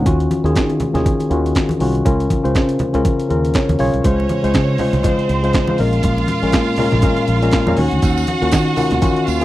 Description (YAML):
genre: disco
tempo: 120 BPM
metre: 4/4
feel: swing 56% on 16ths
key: Eb dorian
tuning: A4 = 435 Hz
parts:
  - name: tine electric piano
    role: accompaniment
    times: 0.0-9.4 s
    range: Bb2 to F5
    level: -17 LUFS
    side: left 2 dB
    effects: none
  - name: fingered electric bass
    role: bass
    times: 0.0-9.4 s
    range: Bb1 to Eb3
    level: -19 LUFS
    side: right 1 dB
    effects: none
  - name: breakbeat sampler-style drum kit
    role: drums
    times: 0.1-9.4 s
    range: handclaps, hi-hat, kick drum, snare drum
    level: -19 LUFS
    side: right 1 dB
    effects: overdrive
  - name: congas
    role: percussion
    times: 0.1-9.2 s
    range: none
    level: -25 LUFS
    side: equal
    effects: none
  - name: clear studio violin section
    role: second line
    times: 4.0-9.4 s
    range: C4 to Gb5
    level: -23 LUFS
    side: right 4 dB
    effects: none
  - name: tambourine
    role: percussion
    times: 8.0-9.4 s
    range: none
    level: -33 LUFS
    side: right 19 dB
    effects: none
room: studio reverb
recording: dry, close 1970s-style studio recording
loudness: -14 LUFS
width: side -15 dB against mid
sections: 0.0-4.0 A section; 4.0-9.4 B section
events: tine electric piano fill 3.3-4.0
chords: 0.1 Ebm9; 2.1 Db6; 4.0 Dbmaj7; 5.8 Bbm7; 7.8 Ebm9